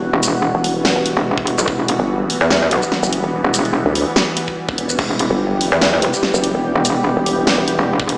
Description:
heavy wobble dubstep; 145 BPM; 4/4; swing 54% on 16ths, half-time; E minor; A4 = 440 Hz
supersaw pad; sustained chords; 0.0-8.2 s; E3 to G4; -20 LUFS; equal; phaser, vintage 12-bit sampler grit, sidechain pumping, low-pass filter
vowel-sweep wobble bass; bass; 0.0-7.8 s; E1 to D2; -19 LUFS; equal; chorus, overdrive
metallic wobble bass; bass; 0.1-8.2 s; E1 to E2; -16 LUFS; equal; chorus, overdrive
dubstep drum kit; drums; 0.2-8.2 s; crash cymbal, hi-hat, shaker, snare drum; -19 LUFS; equal
electronic kick drum; drums; 1.4-1.8, 4.5-5.1, 8.0-8.1 s; -23 LUFS; equal
moderate lush hall reverb, RT60 2.2 s; played on a big sound system in a bare room, stone room reverb, small speaker sound; -14 LUFS; side -27 dB against mid
0.0-8.2 A section
0.0 Em
| 0.02 0.44 0.85 1.26 | 1.68 2.09 2.50 2.92 | 3.33 3.75 4.16 4.57 | 4.99 5.40 5.82 6.23 | 6.64 7.06 7.47 7.88

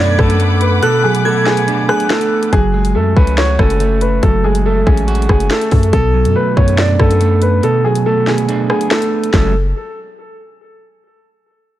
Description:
hip hop, drill; 141 BPM; 4/4; half-time; F# minor; A4 = 442 Hz
warm concert grand piano; melody; 0.0-9.5 s; G#4 to D5; -17 LUFS; left 1 dB
glassy synth bell; second line; 0.0-2.5 s; F#6 to G#6; -21 LUFS; left 1 dB; chorus, tape echo
electric guitar at the edge of break-up; accompaniment; 0.0-9.5 s; B2 to F#4; -17 LUFS; right 5 dB
rich studio string section; sustained chords; 0.0-2.5 s; A3 to D6; -22 LUFS; left 2 dB
hard-hitting 808-style bass; bass; 0.0-9.7 s; F#1 to F#2; -14 LUFS; equal
drill drum kit; drums; 0.2-9.4 s; hi-hat, kick drum, rim click, snare drum; -15 LUFS; equal
little or no reverb; -11 LUFS; side -13 dB against mid
0.0-2.5 A section; 2.5-9.3 B section; 9.3-11.0 C section
kick muted 0.8-2.5; break 7.6-9.3
0.0 Bm7; 2.5 F#madd9; 5.9 Bm7; 9.3 F#madd9
0.40 | 0.82 1.25 1.68 2.10 | 2.53 2.95 3.38 3.80 | 4.23 4.66 5.08 5.51 | 5.93 6.36 6.78 7.21 | 7.63 8.06 8.48 8.91 | 9.34

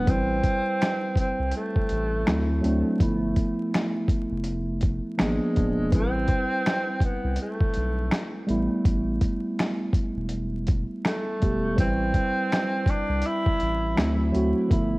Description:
lo-fi hip hop; 82 BPM; 4/4; swing 57% on 16ths; A minor; A4 = 440 Hz
breathy tenor saxophone; melody; 0.0-14.3 s; G#3 to E4; -28 LUFS; equal; low-pass filter, tape echo
mellow tine electric piano; accompaniment; 0.0-15.0 s; F3 to B4; -27 LUFS; right 1 dB; cassette tape, low-pass filter
saturated sub bass; bass; 0.0-15.0 s; D1 to D2; -28 LUFS; equal; tube saturation
dusty soul sampler-style drum kit; drums; 0.1-14.9 s; finger snaps, hi-hat, kick drum, snare drum; -25 LUFS; equal; vintage 12-bit sampler grit
light reverb; worn, warbling old tape, cassette tape, vinyl crackle, warbly pitch drift, faint mains hum; -22 LUFS; side -22 dB against mid
0.0-15.0 A section
0.1 Am9; 2.3 D9; 3.0 G13; 5.2 G#dim7; 5.9 Am9; 8.5 Emadd11; 11.8 Am9; 14.0 D9
| 0.07 0.81 1.54 2.27 | 3.00 3.73 4.46 5.20 | 5.93 6.66 7.39 8.12 | 8.85 9.59 10.32 11.05 | 11.78 12.51 13.24 13.98 | 14.71

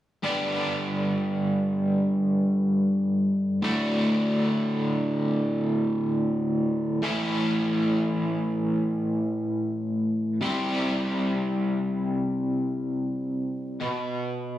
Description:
rock; free time; A4 = 440 Hz
overdriven semi-hollow guitar; solo; 0.2-14.6 s; D2 to C5; -23 LUFS; equal; tremolo
moderate stone room reverb, RT60 0.9 s; rough rehearsal-room recording, tube saturation, studio reverb; -23 LUFS; side -13 dB against mid
0.2-13.8 A section
0.2 G; 3.6 D; 7.0 A; 10.4 C; 13.8 N.C.
free time

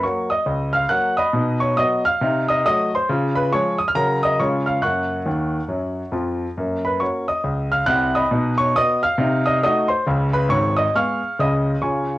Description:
jazz, stride piano; 137 BPM; 4/4; swing 62% on 8ths; F# major; A4 = 440 Hz
clear grand piano; solo; 0.0-12.2 s; G#1 to F#6; -18 LUFS; equal
moderate small room reverb, RT60 0.5 s; home recording on cassette, nothing above 10.3 kHz; -18 LUFS; side -16 dB against mid
0.0-6.6 A section; 6.6-12.2 A section
grand piano fill 5.3-6.6
0.0 F#; 1.3 B; 2.2 Cdim7; 3.1 C#7; 4.0 F#/C#; 4.4 C#; 4.8 F#; 8.3 B; 9.2 Cdim7; 10.1 C#7
0.02 0.46 0.90 | 1.33 1.77 2.21 2.64 | 3.08 3.51 3.95 4.39 | 4.82 5.26 5.70 6.13 | 6.57 7.01 7.44 7.88 | 8.32 8.76 9.19 9.63 | 10.07 10.50 10.94 11.38 | 11.82

